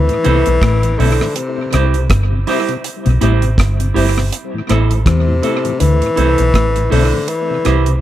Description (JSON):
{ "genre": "roots reggae", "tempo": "81 BPM", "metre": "4/4", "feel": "swing 58% on 16ths", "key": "A minor", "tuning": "A4 = 437 Hz", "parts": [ { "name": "breathy tenor saxophone", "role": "melody", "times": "0.0-8.0 s", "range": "C3 to E3", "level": "-17 LUFS", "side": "left 3 dB", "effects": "tape echo" }, { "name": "vintage muted fingered electric bass", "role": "bass", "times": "0.0-8.0 s", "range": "G1 to E2", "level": "-14 LUFS", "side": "equal", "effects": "none" }, { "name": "mellow tonewheel organ", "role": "accompaniment", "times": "0.1-8.0 s", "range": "A2 to E4", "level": "-24 LUFS", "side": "left 3 dB", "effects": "chorus vibrato, slow rotary speaker, tape echo" }, { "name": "deep reggae drum kit", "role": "drums", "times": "0.1-8.0 s", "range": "hi-hat, kick drum, rim click", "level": "-20 LUFS", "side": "right 1 dB", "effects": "tape echo" }, { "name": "semi-hollow electric guitar", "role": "accompaniment", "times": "0.2-7.9 s", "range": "E4 to C5", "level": "-20 LUFS", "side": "right 7 dB", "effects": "tape echo" }, { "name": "mellow electric guitar", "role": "riff", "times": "0.3-7.9 s", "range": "G2 to E3", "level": "-21 LUFS", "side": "left 5 dB", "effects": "none" } ], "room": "small room ambience", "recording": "none", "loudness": "-12 LUFS", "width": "side -13 dB against mid", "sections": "0.0-8.0 A section", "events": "none", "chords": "0.0 Am; 1.4 C; 4.3 Am; 7.3 C" }